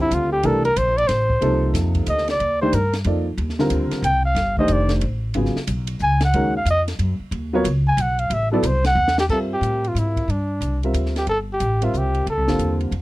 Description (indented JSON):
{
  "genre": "modal jazz",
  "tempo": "183 BPM",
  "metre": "3/4",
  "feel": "swing 64% on 8ths",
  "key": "C dorian, G dorian from 9.3 s",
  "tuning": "A4 = 439 Hz",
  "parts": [
    { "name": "trumpet with bucket mute", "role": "melody", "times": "0.0-12.8 s", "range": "D4 to Ab5", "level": "-21 LUFS", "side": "equal", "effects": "none" },
    { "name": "warm upright piano", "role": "accompaniment", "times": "0.0-12.9 s", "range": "C3 to E5", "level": "-23 LUFS", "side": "equal", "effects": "none" },
    { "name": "upright bass", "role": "bass", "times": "0.0-13.0 s", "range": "F1 to A2", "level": "-22 LUFS", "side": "equal", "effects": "none" },
    { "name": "compact cocktail drum kit", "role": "drums", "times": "0.1-13.0 s", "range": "crash cymbal, hi-hat, kick drum, ride cymbal, snare drum", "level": "-29 LUFS", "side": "equal", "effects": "none" }
  ],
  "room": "little or no reverb",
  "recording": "dry, close 1970s-style studio recording",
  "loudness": "-18 LUFS",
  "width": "side -18 dB against mid",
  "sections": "0.0-1.4 A section; 1.4-9.3 A section; 9.3-13.0 B section",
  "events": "muted trumpet solo 0.0-9.3; drum fill 9.0-9.3",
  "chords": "0.0 G13sus4; 1.4 Cm11; 5.4 Abm11; 8.3 D9 (rootless); 9.3 G13sus4"
}